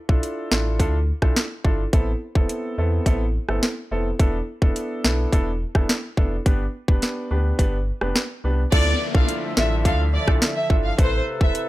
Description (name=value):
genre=dancehall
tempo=106 BPM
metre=4/4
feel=straight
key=unclear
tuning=A4 = 440 Hz
part: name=clear grand piano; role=accompaniment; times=0.1-11.7 s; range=B3 to B4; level=-27 LUFS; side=right 1 dB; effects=none
part: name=sub bass with octave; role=bass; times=0.1-11.5 s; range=E1 to E2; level=-24 LUFS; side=equal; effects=none
part: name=island pop drum kit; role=drums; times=0.1-11.7 s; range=crash cymbal, hi-hat, kick drum, rim click, snare drum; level=-19 LUFS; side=equal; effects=none
part: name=warm studio violin section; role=melody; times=8.7-11.5 s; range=C5 to F5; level=-25 LUFS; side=equal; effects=none
part: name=clear woodwind section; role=sustained chords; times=8.7-11.7 s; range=C3 to E5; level=-32 LUFS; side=left 1 dB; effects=sidechain pumping
part: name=downlifter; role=sound effects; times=8.8-11.7 s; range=none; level=-34 LUFS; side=left 2 dB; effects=none
room=studio reverb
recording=dry, gritty hardware recording, transformer saturation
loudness=-19 LUFS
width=side -17 dB against mid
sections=0.0-8.7 A section; 8.7-11.7 B section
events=none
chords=0.0 Dmadd9; 1.9 Amadd9; 4.2 E7sus4; 6.5 G; 8.7 Dmadd9; 11.0 Amadd9